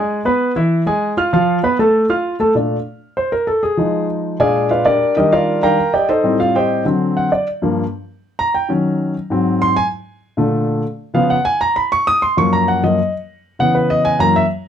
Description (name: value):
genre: jazz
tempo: 196 BPM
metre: 4/4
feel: straight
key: Bb major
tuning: A4 = 440 Hz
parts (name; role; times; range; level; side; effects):
- warm grand piano; solo; 0.0-14.5 s; F#2 to E#6; -14 LUFS; equal; none
room: light reverb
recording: dark, warm production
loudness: -14 LUFS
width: side -9 dB against mid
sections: 0.0-2.6 A section; 2.6-12.4 B section; 12.4-14.7 B section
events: grand piano solo 2.6-14.7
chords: 0.1 E; 1.3 F; 2.6 Bbmaj7; 3.8 Fm7; 4.4 Bb7b9; 5.0 Ebmaj9; 6.2 Am7b5; 6.9 D7; 7.5 Gm7; 8.7 Ebm7; 9.3 Ab7; 9.9 Bbmaj7; 11.1 Db7; 12.4 F#maj7; 13.6 C#m7